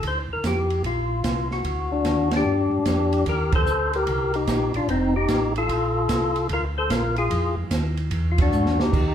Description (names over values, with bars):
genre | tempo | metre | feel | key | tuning
soul jazz organ trio | 148 BPM | 4/4 | swing 66% on 8ths | G minor | A4 = 436 Hz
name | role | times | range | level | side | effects
percussive tonewheel organ | melody | 0.0-9.1 s | C4 to C5 | -23 LUFS | left 2 dB | slow rotary speaker, overdrive
mellow tonewheel organ | bass | 0.0-9.1 s | F1 to G#2 | -26 LUFS | equal | slow rotary speaker
open jazz drum kit | drums | 0.0-9.1 s | crash cymbal, hi-hat, kick drum, ride cymbal, snare drum | -27 LUFS | right 2 dB | none
room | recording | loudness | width
wet club reverb, RT60 0.7 s | heard from further back in the room | -20 LUFS | side -9 dB against mid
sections
0.0-2.5 A section; 2.5-9.1 B section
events
band accent 2.3, 3.5, 8.3; drum fill 8.5-8.9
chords
0.0 Bbadd9; 1.6 D; 2.5 G5; 4.1 Cm7; 4.9 F7; 5.7 Bbmaj7; 7.3 Ebsus24; 8.1 E7